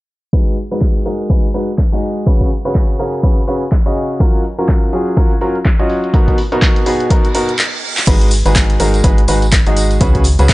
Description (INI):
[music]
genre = piano house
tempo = 124 BPM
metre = 4/4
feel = swing 59% on 16ths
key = G# dorian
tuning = A4 = 437 Hz
[part]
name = bright upright piano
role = riff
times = 0.3-10.5 s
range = B2 to D#5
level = -17 LUFS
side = equal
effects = sidechain pumping, low-pass filter
[part]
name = electronic kick drum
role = drums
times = 0.3-10.5 s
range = none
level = -13 LUFS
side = equal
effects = overdrive
[part]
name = punchy analog drum machine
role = drums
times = 0.3-10.5 s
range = crash cymbal, handclaps, hi-hat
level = -20 LUFS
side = equal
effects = overdrive
[part]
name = reverse cymbal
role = sound effects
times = 7.3-8.1 s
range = none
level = -23 LUFS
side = right 5 dB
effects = none
[part]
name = organ-like FM bass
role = bass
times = 8.1-10.5 s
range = G#1 to C#2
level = -14 LUFS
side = equal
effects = sidechain pumping
[part]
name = tambourine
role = percussion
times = 8.1-10.5 s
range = none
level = -28 LUFS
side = equal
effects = none
[sound]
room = digital ambience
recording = dry, gritty hardware recording, low-pass filter, nothing above 10.3 kHz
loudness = -11 LUFS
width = side -19 dB against mid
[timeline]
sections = 0.3-8.1 A section; 8.1-10.5 B section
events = filter sweep on upright piano 0.3-8.1; filter sweep 0.3-8.1; reverse cymbal 7.3-8.1; drum fill 7.6-8.1; stop 7.6-8.1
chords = 0.3 G#m7; 2.3 C#7sus4; 4.2 F#maj7; 6.1 Bmaj7; 8.1 G#m7; 10.0 C#7sus4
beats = | 0.33 0.81 1.30 1.78 | 2.27 2.75 3.23 3.72 | 4.20 4.69 5.17 5.65 | 6.14 6.62 7.11 7.59 | 8.07 8.56 9.04 9.52 | 10.01 10.49